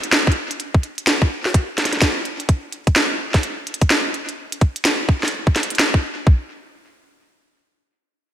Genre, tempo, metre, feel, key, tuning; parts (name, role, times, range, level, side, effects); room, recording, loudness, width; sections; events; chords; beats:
IDM; 127 BPM; 4/4; swing 62% on 16ths
glitchy drum kit; drums; 0.0-5.9 s; hi-hat, snare drum; -19 LUFS; equal; gated reverb, digital delay
electronic kick drum; drums; 0.3-6.4 s; -14 LUFS; equal
light reverb; bright 1980s-style digital production; -17 LUFS; side -10 dB against mid
0.0-6.3 A section; 6.3-8.3 B section
0.12 | 0.60 1.07 1.54 2.02 | 2.49 2.96 3.43 3.90 | 4.38 4.85 5.32 5.79 | 6.27